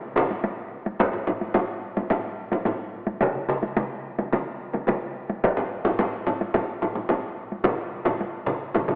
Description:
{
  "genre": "japanese traditional, taiko drum ensemble",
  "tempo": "108 BPM",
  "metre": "4/4",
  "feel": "straight",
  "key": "none",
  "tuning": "none",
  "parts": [
    { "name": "taiko ensemble", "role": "percussion", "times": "0.2-9.0 s", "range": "none", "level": "-30 LUFS", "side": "equal", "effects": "none" },
    { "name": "taiko ensemble", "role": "percussion", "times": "0.2-9.0 s", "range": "none", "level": "-34 LUFS", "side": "equal", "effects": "none" },
    { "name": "solo taiko drums", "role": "percussion", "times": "0.3-8.9 s", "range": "none", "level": "-32 LUFS", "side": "equal", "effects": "none" },
    { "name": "taiko ensemble", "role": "percussion", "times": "1.0-7.8 s", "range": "none", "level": "-30 LUFS", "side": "equal", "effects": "none" }
  ],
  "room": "moderate concert hall reverb, RT60 2.4 s",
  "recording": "worn, warbling old tape, cassette tape, warbly pitch drift, telephone sound",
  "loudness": "-27 LUFS",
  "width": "mono",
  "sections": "0.0-9.0 A section",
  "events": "none",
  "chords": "none",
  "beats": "0.44 | 1.00 1.56 2.11 2.67 | 3.22 3.78 4.33 4.89 | 5.44 5.99 6.55 7.10 | 7.65 8.20 8.75"
}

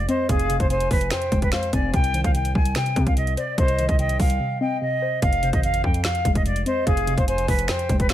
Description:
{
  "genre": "hip hop, trap",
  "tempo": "146 BPM",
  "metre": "4/4",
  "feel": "half-time",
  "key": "unclear",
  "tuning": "A4 = 442 Hz",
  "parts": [
    { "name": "silver concert flute", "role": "melody", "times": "0.0-8.1 s", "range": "Ab4 to Ab5", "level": "-25 LUFS", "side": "equal", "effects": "none" },
    { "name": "warbly dusty pluck", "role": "accompaniment", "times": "0.0-8.1 s", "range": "F2 to C5", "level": "-26 LUFS", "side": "equal", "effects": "chorus" },
    { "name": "distorted 808-style bass", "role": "bass", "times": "0.0-8.1 s", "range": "F1 to C3", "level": "-26 LUFS", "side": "equal", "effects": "distortion" },
    { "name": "hollow clarinet-like synth lead", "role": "second line", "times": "0.1-8.1 s", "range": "C5 to Ab5", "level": "-32 LUFS", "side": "left 4 dB", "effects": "chorus, ping-pong delay" },
    { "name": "trap drum kit", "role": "drums", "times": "0.1-8.1 s", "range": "finger snaps, hi-hat, kick drum, snare drum", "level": "-23 LUFS", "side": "equal", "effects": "none" }
  ],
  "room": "digital ambience",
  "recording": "none",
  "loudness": "-19 LUFS",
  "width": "side -12 dB against mid",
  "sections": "0.0-8.1 A section",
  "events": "break 4.4-5.2",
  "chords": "0.0 Fm; 1.9 Cm; 5.2 Fm",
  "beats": "| 0.29 0.70 1.11 1.52 | 1.94 2.35 2.76 3.17 | 3.58 3.99 4.40 4.81 | 5.22 5.63 6.04 6.46 | 6.87 7.28 7.69 8.10"
}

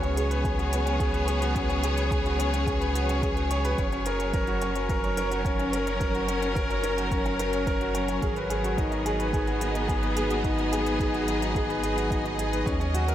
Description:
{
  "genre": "piano and strings electronica",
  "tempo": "108 BPM",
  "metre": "4/4",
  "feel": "straight",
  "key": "unclear",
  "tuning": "A4 = 441 Hz",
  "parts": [
    { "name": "clear studio string section", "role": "sustained chords", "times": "0.0-13.1 s", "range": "Gb3 to Eb5", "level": "-30 LUFS", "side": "left 1 dB", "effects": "sidechain pumping" },
    { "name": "clear grand piano", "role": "riff", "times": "0.0-13.1 s", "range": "Db4 to Db5", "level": "-28 LUFS", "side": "equal", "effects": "analog delay" },
    { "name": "warm sub bass", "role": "bass", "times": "0.0-13.1 s", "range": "Gb1 to Eb2", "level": "-30 LUFS", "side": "equal", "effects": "sidechain pumping" },
    { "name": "electronic hi-hat", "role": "drums", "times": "0.0-13.1 s", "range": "none", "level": "-40 LUFS", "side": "equal", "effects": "overdrive" },
    { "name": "electronic kick drum", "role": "drums", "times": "0.4-12.8 s", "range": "none", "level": "-30 LUFS", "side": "equal", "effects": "overdrive" }
  ],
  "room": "moderate huge ambient reverb, RT60 8.2 s",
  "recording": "dreamy mix soaked in reverb",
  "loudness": "-24 LUFS",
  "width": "side -11 dB against mid",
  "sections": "0.0-13.1 A section",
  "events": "none",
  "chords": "0.0 Db7sus4; 3.8 Gb; 8.2 Abm7",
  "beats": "0.45 1.00 | 1.56 2.11 2.67 3.23 | 3.78 4.34 4.89 5.45 | 6.00 6.56 7.11 7.67 | 8.22 8.78 9.34 9.89 | 10.45 11.00 11.56 12.11 | 12.67"
}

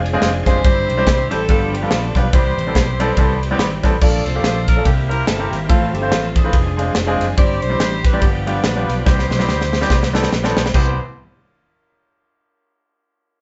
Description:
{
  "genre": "uptempo gospel",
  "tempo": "143 BPM",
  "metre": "4/4",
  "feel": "swing 58% on 8ths",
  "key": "C major",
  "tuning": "A4 = 439 Hz",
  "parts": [
    { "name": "bright tonewheel organ", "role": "sustained chords", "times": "0.0-11.0 s", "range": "E3 to Bb4", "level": "-30 LUFS", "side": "equal", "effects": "slow rotary speaker, overdrive, chorus vibrato" },
    { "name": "fingered electric bass", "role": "bass", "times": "0.0-11.0 s", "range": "F1 to D2", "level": "-24 LUFS", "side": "equal", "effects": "none" },
    { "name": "clear baby grand piano", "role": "accompaniment", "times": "0.1-11.0 s", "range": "C2 to D5", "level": "-23 LUFS", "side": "equal", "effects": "none" },
    { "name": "crisp fusion drum kit", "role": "drums", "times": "0.1-10.9 s", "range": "crash cymbal, kick drum, ride cymbal, snare drum", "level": "-20 LUFS", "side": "equal", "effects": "none" },
    { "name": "bright saxophone section", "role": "melody", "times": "0.5-11.0 s", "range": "Bb3 to D5", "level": "-26 LUFS", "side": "equal", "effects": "none" }
  ],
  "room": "moderate studio reverb, RT60 0.6 s",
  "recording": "band playing live in one room, nothing above 7.9 kHz",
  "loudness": "-17 LUFS",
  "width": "mono",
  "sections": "0.0-4.0 A section; 4.0-10.7 B section; 10.7-12.4 C section",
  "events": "drum fill 9.1-10.7",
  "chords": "0.0 Fm6; 0.6 C/G; 1.5 G7; 2.3 Cmaj7; 4.0 Bbmaj7; 4.9 C7; 5.7 Fmaj7; 6.5 Fm6; 7.4 C/G; 8.2 G7; 9.1 Cmaj7",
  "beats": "0.22 | 0.64 1.06 1.49 1.91 | 2.33 2.75 3.17 3.59 | 4.01 4.43 4.86 5.28 | 5.70 6.12 6.54 6.96 | 7.38 7.80 8.22 8.64 | 9.06 9.48 9.90 10.32 | 10.74"
}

